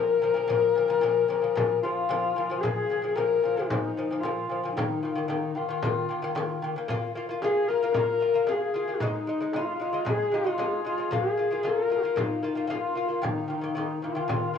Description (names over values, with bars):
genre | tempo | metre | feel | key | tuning
mongolian traditional, Mongolian folk | 113 BPM | 4/4 | straight | unclear | A4 = 441 Hz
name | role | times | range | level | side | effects
dark horsehead fiddle | melody | 0.0-14.6 s | Eb4 to Bb4 | -26 LUFS | left 4 dB | cassette tape
mellow xiao | second line | 0.0-14.6 s | Eb4 to Bb4 | -33 LUFS | left 5 dB | cassette tape
lute | arpeggios | 0.0-14.6 s | Bb2 to F4 | -32 LUFS | left 1 dB | cassette tape
frame drum | percussion | 0.2-14.4 s | none | -34 LUFS | left 3 dB | none
room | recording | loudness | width
light reverb, studio ambience | home recording on cassette, small room ambience | -24 LUFS | side -7 dB against mid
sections
0.0-2.6 A section; 2.6-14.6 B section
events
none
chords
0.0 Bb5; 4.8 Eb5; 6.9 Bb5; 9.0 Ab5; 11.1 Bb5; 13.2 Eb5